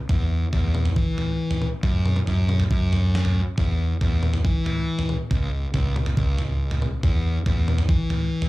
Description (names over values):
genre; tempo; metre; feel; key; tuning
indie rock; 138 BPM; 4/4; straight; unclear; A4 = 436 Hz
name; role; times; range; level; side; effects
fuzz fingered electric bass; bass; 0.1-8.5 s; C#2 to E3; -23 LUFS; equal; overdrive
gated 80s digital drum machine; drums; 0.1-8.5 s; kick drum, snare drum, toms; -24 LUFS; equal; gated reverb, gated reverb snare, overdrive
room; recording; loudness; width
little or no reverb; live gig heard through the venue's PA, club reverb; -20 LUFS; side -18 dB against mid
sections
0.0-8.5 A section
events
none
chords
none